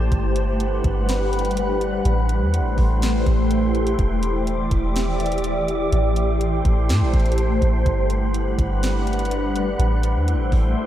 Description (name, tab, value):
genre	hip hop, atmospheric cloud-rap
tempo	124 BPM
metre	4/4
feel	half-time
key	unclear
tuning	A4 = 440 Hz
part	shimmering ambient pad	sustained chords	0.0-10.9 s	E3 to F#5	-23 LUFS	equal	chorus, built-in reverb, phaser, sidechain pumping
part	soft 808-style bass	bass	0.0-10.8 s	E1 to A2	-21 LUFS	equal	none
part	wind-like tuned noise texture	texture	0.0-10.9 s	G4 to D6	-32 LUFS	equal	built-in reverb
part	smooth R&B drum kit	drums	0.1-10.6 s	hi-hat, kick drum, snare drum	-25 LUFS	equal	none
room	moderate lush hall reverb, RT60 2.2 s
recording	dreamy mix soaked in reverb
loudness	-18 LUFS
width	side -12 dB against mid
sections	0.0-10.9 A section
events	none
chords	0.1 Gmaj7; 2.1 Am7; 4.0 Em7; 5.9 Am7; 7.9 Gmaj7; 9.8 Am7